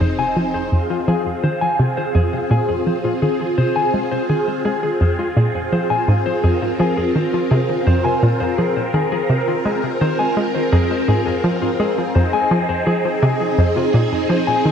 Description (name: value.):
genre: ambient, sequencer-driven space music.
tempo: 84 BPM.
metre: 4/4.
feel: straight.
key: F minor.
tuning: A4 = 443 Hz.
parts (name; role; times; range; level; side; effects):
phased string machine; sustained chords; 0.0-14.7 s; C4 to C5; -20 LUFS; right 1 dB; ensemble chorus, phaser.
mellow electric guitar; arpeggios; 0.0-14.6 s; F4 to Ab5; -22 LUFS; left 3 dB; auto-pan, ping-pong delay.
hollow square pluck; riff; 0.0-14.7 s; F2 to Ab3; -19 LUFS; equal; chorus, ping-pong delay.
round analog bass; bass; 0.0-0.7 s; F1; -38 LUFS; equal; none.
room: wet lush hall reverb, RT60 3.1 s.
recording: dreamy mix soaked in reverb.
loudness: -16 LUFS.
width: side -8 dB against mid.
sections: 0.7-14.7 A section.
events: none.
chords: 0.0 Fm.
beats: 0.01 | 0.72 1.44 2.15 2.87 | 3.58 4.30 5.01 5.72 | 6.44 7.15 7.87 8.58 | 9.30 10.01 10.72 11.44 | 12.15 12.87 13.58 14.30.